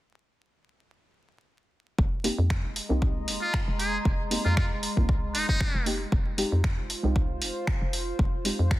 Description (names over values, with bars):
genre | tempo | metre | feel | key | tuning
deep house | 116 BPM | 4/4 | swing 55% on 16ths | F minor | A4 = 439 Hz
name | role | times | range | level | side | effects
hollow knocking FM bass | bass | 2.0-8.8 s | F1 to F2 | -29 LUFS | equal | sidechain pumping
electronic kick drum | drums | 2.0-8.8 s | none | -26 LUFS | equal | none
warbly tape-like pad | texture | 2.7-8.8 s | Ab3 to C6 | -36 LUFS | right 1 dB | chorus, built-in reverb, sidechain pumping
deep mellow chord stab | stabs | 2.2-8.7 s | Ab3 to G4 | -32 LUFS | equal | chorus, sidechain pumping, digital delay
punchy analog drum machine | drums | 2.2-8.8 s | finger snaps, hi-hat | -32 LUFS | equal | overdrive, soft clipping on snare
trumpet with metal mute | melody | 3.4-5.9 s | Eb4 to Ab4 | -32 LUFS | equal | vintage 12-bit sampler grit, tape echo
room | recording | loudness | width
digital ambience | dense, heavily limited modern master, vinyl crackle | -24 LUFS | side -16 dB against mid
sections
2.0-8.8 A section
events
filter sweep on synth stab 2.0-8.8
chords
2.0 Fm9